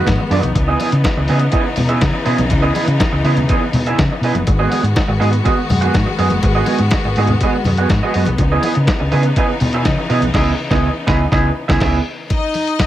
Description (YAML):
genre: disco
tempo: 122 BPM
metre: 4/4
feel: straight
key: unclear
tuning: A4 = 440 Hz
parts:
  - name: electric guitar through a small old amp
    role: accompaniment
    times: 0.0-12.0 s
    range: B3 to F#5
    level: -19 LUFS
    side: right 4 dB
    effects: lush chorus
  - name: bright symphonic string section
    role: sustained chords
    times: 0.0-12.3 s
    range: C#3 to F#4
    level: -22 LUFS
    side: left 2 dB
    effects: none
  - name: hollow-body short-scale fingered electric bass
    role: bass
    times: 0.1-12.0 s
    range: F#1 to C#3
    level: -17 LUFS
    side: equal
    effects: none
  - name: lo-fi sampler-style drum kit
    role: drums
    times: 0.1-12.9 s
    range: crash cymbal, hi-hat, kick drum, snare drum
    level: -19 LUFS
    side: equal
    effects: none
  - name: congas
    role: percussion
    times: 0.1-12.9 s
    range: none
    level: -24 LUFS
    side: left 4 dB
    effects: none
  - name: clear studio string section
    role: second line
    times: 12.3-12.9 s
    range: D#4 to D#5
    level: -18 LUFS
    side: left 3 dB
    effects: slapback echo
room: digital ambience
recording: none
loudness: -13 LUFS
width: side -13 dB against mid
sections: 0.0-12.3 A section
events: band accent 10.3-12.3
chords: 0.0 G#m7; 0.6 C#m9; 4.5 G#m7; 8.4 C#m9; 12.3 N.C.